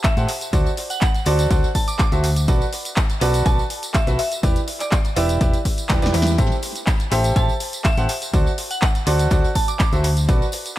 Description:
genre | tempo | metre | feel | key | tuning
piano house | 123 BPM | 4/4 | straight | unclear | A4 = 443 Hz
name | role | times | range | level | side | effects
soft synth bell | melody | 0.0-10.0 s | D5 to D6 | -28 LUFS | right 1 dB | chorus, phaser, tape echo
electronic kick drum | drums | 0.0-10.4 s | none | -19 LUFS | equal | none
punchy analog drum machine | drums | 0.0-10.8 s | handclaps, hi-hat, snare drum, tambourine | -26 LUFS | equal | tape echo
tambourine | percussion | 0.0-10.7 s | none | -37 LUFS | equal | none
bright baby grand piano | riff | 0.2-10.4 s | E4 to F#5 | -24 LUFS | right 1 dB | sidechain pumping, tape echo
hollow-body short-scale fingered electric bass | bass | 0.2-10.4 s | E1 to A2 | -20 LUFS | equal | sidechain pumping
room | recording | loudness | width
digital ambience | echo-heavy mix | -17 LUFS | side -15 dB against mid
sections
0.0-10.8 A section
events
drum fill 5.9-6.4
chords
0.3 D7; 2.5 Bm7; 4.2 Em7; 6.4 Am7; 8.1 D7

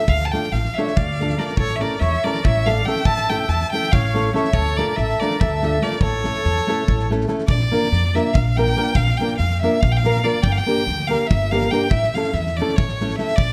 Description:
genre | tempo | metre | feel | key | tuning
balkan folk, Balkan wedding band | 285 BPM (eighths) | 7/8 | straight | A phrygian dominant | A4 = 440 Hz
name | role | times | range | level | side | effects
bright violin | melody | 0.0-13.5 s | C#5 to A5 | -25 LUFS | equal | none
nylon-string guitar | accompaniment | 0.0-13.3 s | A3 to Bb4 | -26 LUFS | equal | none
upright bass | bass | 0.1-13.5 s | G1 to F2 | -24 LUFS | equal | none
huge arena drum kit | percussion | 0.1-13.5 s | kick drum, snare drum | -26 LUFS | equal | none
accordion | second line | 0.8-7.1 s | A4 to E5 | -29 LUFS | equal | none
room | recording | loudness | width
light reverb | none | -19 LUFS | mono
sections
0.0-7.5 A section; 7.5-13.5 B section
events
none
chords
0.0 Dm; 1.6 A; 4.5 Dm; 6.0 A; 7.5 Bb; 10.4 Gm; 11.9 A

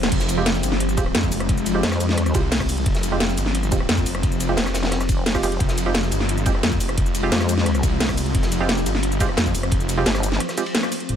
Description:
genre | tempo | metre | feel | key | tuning
dark technical drum and bass | 175 BPM | 4/4 | straight | F minor | A4 = 442 Hz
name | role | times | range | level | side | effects
swarming drone | sustained chords | 0.0-11.2 s | F3 to C5 | -26 LUFS | left 3 dB | built-in reverb, sidechain pumping
vowel-sweep wobble bass | bass | 0.0-2.3, 4.6-7.8, 10.1-10.4 s | F1 to F2 | -23 LUFS | equal | chorus
drum and bass drum kit | drums | 0.0-11.2 s | crash cymbal, hi-hat, ride cymbal, rim click, shaker, snare drum | -24 LUFS | equal | none
swell and sub drop | sound effects | 0.0-0.1, 11.1-11.2 s | none | -33 LUFS | equal | none
wide detuned saw bass | bass | 0.1-11.2 s | F1 to F2 | -24 LUFS | equal | chorus, tube saturation, sidechain pumping
crunchy breakbeat drum kit | drums | 0.1-11.0 s | hi-hat, ride cymbal, snare drum | -33 LUFS | equal | high-pass filter on cymbals, high-pass filter on hats, high-pass filter on snare, high-pass filter on room
electronic kick drum | drums | 0.1-9.8 s | none | -23 LUFS | equal | overdrive
filtered dub chord stab | stabs | 0.4-10.6 s | Ab3 to G4 | -28 LUFS | right 4 dB | chorus, cassette tape, ping-pong delay
room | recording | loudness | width
light reverb | none | -18 LUFS | side -9 dB against mid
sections
0.0-11.1 A section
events
drop 0.0-11.1; break 10.4-11.1; band accent 10.7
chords
0.0 Fmadd9

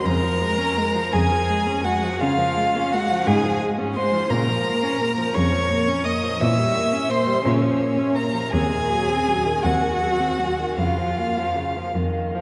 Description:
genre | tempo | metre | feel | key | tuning
classical, slow romantic movement for string quartet | 50-58 BPM (dotted quarters) | 6/8 | rubato | Db major, Bb minor from 4.3 s | A4 = 440 Hz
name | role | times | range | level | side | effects
rich violin | melody | 0.0-11.9 s | Db5 to Fb6 | -28 LUFS | equal | none
rich violin | second line | 0.0-12.0 s | Db4 to Fb5 | -26 LUFS | equal | none
rich viola | accompaniment | 0.0-12.4 s | C3 to Db4 | -28 LUFS | equal | none
clear cello | bass | 0.1-12.4 s | Eb2 to Db3 | -28 LUFS | equal | none
room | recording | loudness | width
wet cathedral reverb, RT60 6.5 s | recorded in a church or concert hall, nothing above 10.9 kHz | -21 LUFS | mono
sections
0.0-12.4 A section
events
none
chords
0.0 Db/F; 2.2 Db; 4.3 Bbm; 6.4 Bbdim7; 7.5 Bbm; 8.5 Cdim/Eb; 10.8 Bbm/F

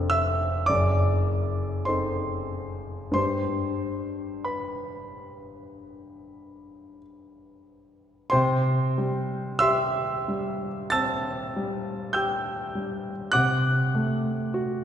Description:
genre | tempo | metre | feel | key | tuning
classical, romantic nocturne for solo piano | 44-53 BPM | 4/4 | rubato | C major | A4 = 440 Hz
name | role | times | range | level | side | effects
warm concert grand piano | solo | 0.0-14.8 s | F1 to A6 | -24 LUFS | equal | none
room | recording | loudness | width
wet church reverb, RT60 2.9 s | recorded in a church or concert hall | -24 LUFS | side -9 dB against mid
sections
0.0-8.3 A section; 8.3-14.8 B section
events
none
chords
0.0 Dm7/F; 0.7 F#dim7; 3.2 G; 8.3 C; 13.3 D7/C

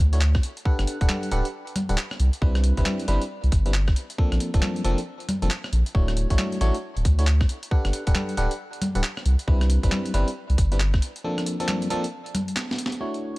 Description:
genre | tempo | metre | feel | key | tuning
UK garage, two-step garage | 136 BPM | 4/4 | swing 62% on 16ths | unclear | A4 = 440 Hz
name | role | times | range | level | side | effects
saturated sub bass | bass | 0.0-11.0 s | D1 to D2 | -21 LUFS | equal | sidechain pumping
FM electric piano | stabs | 0.1-13.4 s | F3 to F#5 | -29 LUFS | equal | chorus, low-pass filter, tape echo
breakbeat sampler-style drum kit | drums | 0.1-13.4 s | congas, handclaps, hi-hat, rim click, snare drum | -29 LUFS | equal | overdrive
electronic kick drum | drums | 0.3-11.0 s | none | -21 LUFS | equal | none
room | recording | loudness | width
little or no reverb | dry, gritty hardware recording, cassette tape | -21 LUFS | side -21 dB against mid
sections
0.0-13.0 A section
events
break 11.2-13.0; drum fill 12.6-13.0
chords
0.4 Gmaj9; 2.2 Cmaj9; 4.0 Bbmaj9; 5.9 Dmaj9; 7.5 Gmaj9; 9.3 Cmaj9; 11.0 Bbmaj9

